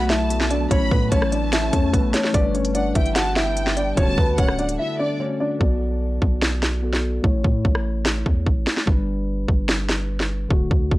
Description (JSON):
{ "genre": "hip hop, trap", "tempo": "147 BPM", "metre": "4/4", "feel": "half-time", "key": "unclear", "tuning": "A4 = 438 Hz", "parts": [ { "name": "dark concert grand piano", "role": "melody", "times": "0.0-5.6 s", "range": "B3 to F#5", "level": "-24 LUFS", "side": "equal", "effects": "low-pass filter" }, { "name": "warm studio violin section", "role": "second line", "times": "0.0-5.2 s", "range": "D5 to B5", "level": "-30 LUFS", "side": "equal", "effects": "tape echo" }, { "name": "tine electric piano", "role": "accompaniment", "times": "0.0-11.0 s", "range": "D3 to D5", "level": "-29 LUFS", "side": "left 2 dB", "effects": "lush chorus, low-pass filter" }, { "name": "glassy FM pad", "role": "sustained chords", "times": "0.0-5.6 s", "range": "D3 to A4", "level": "-29 LUFS", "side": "left 2 dB", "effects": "ensemble chorus, built-in reverb" }, { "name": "long sustained 808-style bass", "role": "bass", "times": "0.0-11.0 s", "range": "D1 to A2", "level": "-25 LUFS", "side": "equal", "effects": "none" }, { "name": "trap drum kit", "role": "drums", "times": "0.1-11.0 s", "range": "hi-hat, kick drum, rim click, snare drum", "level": "-20 LUFS", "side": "equal", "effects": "none" } ], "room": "digital ambience", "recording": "dry, gritty hardware recording, transformer saturation, cassette tape", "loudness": "-18 LUFS", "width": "side -18 dB against mid", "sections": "0.0-5.6 A section; 5.6-11.0 B section", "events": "break 4.8-5.6; hi-hats muted 5.6-11.0; filter sweep 5.6-11.0", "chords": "0.0 Bm; 0.7 A; 2.3 G; 4.0 D; 5.6 Bm; 7.2 A; 8.9 G", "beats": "0.30 | 0.71 1.12 1.52 1.93 | 2.34 2.75 3.16 3.57 | 3.97 4.38 4.79 5.20 | 5.61 6.01 6.42 6.83 | 7.24 7.65 8.06 8.46 | 8.87 9.28 9.69 10.10 | 10.51 10.91" }